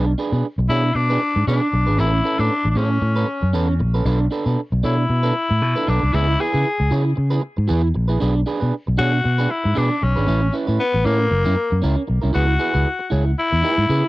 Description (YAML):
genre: disco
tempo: 116 BPM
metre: 4/4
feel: swing 56% on 16ths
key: unclear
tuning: A4 = 440 Hz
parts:
  - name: electric guitar at the edge of break-up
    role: accompaniment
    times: 0.0-14.1 s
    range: C#4 to C#5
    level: -24 LUFS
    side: right 4 dB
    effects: tube saturation
  - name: fingered electric bass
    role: bass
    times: 0.0-14.0 s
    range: F#1 to C#3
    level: -18 LUFS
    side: equal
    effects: none
  - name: raspy tenor saxophone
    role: melody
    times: 0.7-14.1 s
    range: A#3 to G#4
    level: -21 LUFS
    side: left 2 dB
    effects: tape echo
room: little or no reverb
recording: dry, close 1970s-style studio recording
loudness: -17 LUFS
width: side -18 dB against mid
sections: 0.0-12.3 A section; 12.3-14.1 B section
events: none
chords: 0.0 G#dim; 2.0 Aadd9; 4.1 Bm7; 6.1 C#m7; 8.2 G#m7b5; 10.3 Aadd9; 11.3 F#7; 12.3 C#m7